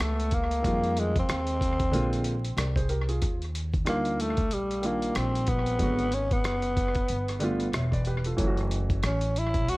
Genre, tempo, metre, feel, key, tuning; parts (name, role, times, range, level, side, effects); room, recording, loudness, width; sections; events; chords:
hip hop, jazz-hop; 93 BPM; 4/4; swing 59% on 16ths; A4 = 441 Hz
growling tenor saxophone; melody; 0.0-9.8 s; G3 to F#4; -29 LUFS; equal; tape echo
upright bass; bass; 0.0-9.8 s; E1 to F2; -30 LUFS; equal
dusty soul sampler-style drum kit; drums; 0.0-9.8 s; hi-hat, kick drum, rim click; -30 LUFS; equal
warm grand piano; accompaniment; 0.6-9.3 s; D3 to E5; -31 LUFS; right 1 dB
studio reverb; echo-heavy mix, vinyl crackle; -25 LUFS; side -21 dB against mid
0.0-9.8 A section
0.0 Dmaj7(no3) (rootless); 0.6 Fm11; 1.9 Bb9; 3.2 Ebmaj9; 5.8 G#m7b5; 7.1 G9; 8.4 F#m7